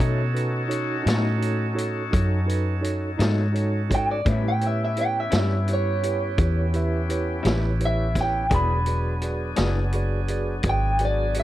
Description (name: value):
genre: slow blues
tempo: 56 BPM (dotted quarters)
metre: 12/8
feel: straight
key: unclear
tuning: A4 = 440 Hz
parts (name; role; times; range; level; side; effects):
- electric guitar through a small old amp; accompaniment; 0.0-9.8 s; A2 to G#4; -31 LUFS; left 6 dB; harmonic tremolo
- tine electric piano; accompaniment; 0.0-11.4 s; D#4 to E5; -30 LUFS; right 3 dB; medium tremolo
- overdriven tonewheel organ; sustained chords; 0.0-11.4 s; F#3 to A4; -32 LUFS; equal; slow rotary speaker
- vintage muted fingered electric bass; bass; 0.0-11.4 s; E1 to B2; -24 LUFS; equal; none
- vintage drum kit; drums; 0.0-11.4 s; hi-hat, kick drum, snare drum; -26 LUFS; equal; none
- electric guitar through a small old amp; melody; 3.9-11.4 s; C#5 to B5; -26 LUFS; right 1 dB; none
room: little or no reverb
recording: dry, close 1970s-style studio recording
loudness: -21 LUFS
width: side -14 dB against mid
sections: 0.0-11.4 A section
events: none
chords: 0.0 B7; 4.3 A7; 8.5 E7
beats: | 0.00 1.06 2.12 3.19 | 4.25 5.32 6.38 7.44 | 8.51 9.57 10.63